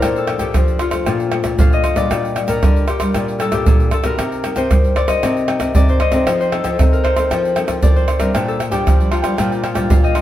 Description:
samba and choro; 115 BPM; 4/4; straight; Bb major; A4 = 440 Hz
Celtic harp; melody; 0.0-10.2 s; F4 to F5; -20 LUFS; left 4 dB
nylon-string guitar; accompaniment; 0.0-10.2 s; F2 to A4; -25 LUFS; equal
nylon-string guitar; bass; 0.0-10.1 s; Bb2 to G3; -22 LUFS; left 1 dB
agogo bells, egg shaker, surdo, pandeiro and tamborim; percussion; 0.0-10.2 s; -16 LUFS; right 1 dB
cavaquinho; accompaniment; 8.3-10.2 s; D4 to G5; -25 LUFS; right 3 dB
wet stone room reverb, RT60 1.0 s; band playing live in one room; -14 LUFS; side -12 dB against mid
0.0-10.2 A section
0.0 Bbmaj7; 2.1 Gm7/Bb; 4.2 Cm7; 6.3 F7; 8.3 Bb6
| 0.03 0.55 1.07 1.59 | 2.11 2.63 3.15 3.67 | 4.19 4.71 5.23 5.75 | 6.27 6.79 7.31 7.83 | 8.35 8.87 9.39 9.91

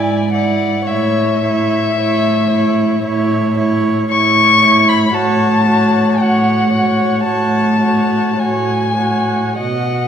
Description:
classical, slow romantic movement for string quartet; 47-58 BPM; 4/4; rubato; A major; A4 = 438 Hz
muted violin; melody; 0.0-10.1 s; E5 to C#6; -16 LUFS; left 4 dB
muted violin; second line; 0.0-10.1 s; C#5 to D#5; -21 LUFS; left 1 dB
muted viola; accompaniment; 0.0-10.1 s; E4 to F#4; -20 LUFS; right 4 dB
muted cello; bass; 0.0-10.1 s; G#2 to B2; -16 LUFS; right 1 dB
wet recital hall reverb, RT60 1.4 s; heard from further back in the room; -12 LUFS; side -8 dB against mid
0.0-10.1 A section
0.0 E7/G#; 0.9 A; 5.1 F#m/A
| 0.87 1.97 3.04 4.09 | 5.15 6.20 7.25 8.38 | 9.59

